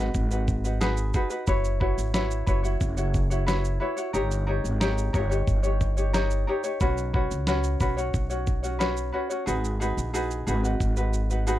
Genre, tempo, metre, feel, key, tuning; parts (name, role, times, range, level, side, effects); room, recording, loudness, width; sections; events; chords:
acoustic pop; 90 BPM; 4/4; straight; G# minor; A4 = 440 Hz
ukulele; accompaniment; 0.0-11.6 s; C#4 to C#5; -28 LUFS; left 1 dB
upright bass; bass; 0.0-11.6 s; F#1 to C#2; -26 LUFS; equal
dusty soul sampler-style drum kit; drums; 0.1-11.6 s; kick drum, shaker, snare drum; -28 LUFS; equal; overdrive
light reverb; dark, warm production; -23 LUFS; side -14 dB against mid
0.0-11.6 A section
drum fill 9.5-11.6
0.0 G#m7; 1.5 F#7sus4; 4.1 D#7/G; 6.8 Bsus2; 9.5 G#m7